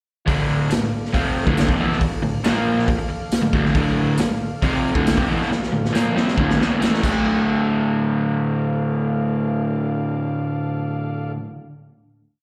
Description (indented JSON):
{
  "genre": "garage rock duo or trio",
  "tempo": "137 BPM",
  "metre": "4/4",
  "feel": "straight",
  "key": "D minor",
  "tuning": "A4 = 439 Hz",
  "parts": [
    { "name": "overdriven combo organ", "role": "sustained chords", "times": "0.2-11.3 s", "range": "F4 to F5", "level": "-35 LUFS", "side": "equal", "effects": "plate reverb" },
    { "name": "crunchy overdriven guitar", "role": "riff", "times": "0.3-11.4 s", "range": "D2 to C4", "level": "-22 LUFS", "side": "equal", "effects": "slapback echo" },
    { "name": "raw garage drum kit", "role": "drums", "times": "0.3-7.1 s", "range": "crash cymbal, hi-hat, kick drum, snare drum", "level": "-25 LUFS", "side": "equal", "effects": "none" },
    { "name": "tambourine", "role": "percussion", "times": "0.7-7.4 s", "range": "none", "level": "-40 LUFS", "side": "equal", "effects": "none" }
  ],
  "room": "moderate club reverb, RT60 0.5 s",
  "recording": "live gig heard through the venue's PA, recital hall reverb",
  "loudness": "-21 LUFS",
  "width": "mono",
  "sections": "0.3-7.3 riff; 7.3-10.8 final hit",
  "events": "drum fill 5.5-7.3",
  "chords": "0.3 Dm; 2.5 Bb5; 2.9 Dm",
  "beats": "| 0.28 0.71 1.15 1.58 | 2.02 2.45 2.89 3.32 | 3.76 4.19 4.63 5.07 | 5.50 5.94 6.38 6.82 | 7.26 7.70 8.13 8.57 | 9.01 9.45 9.88 10.32"
}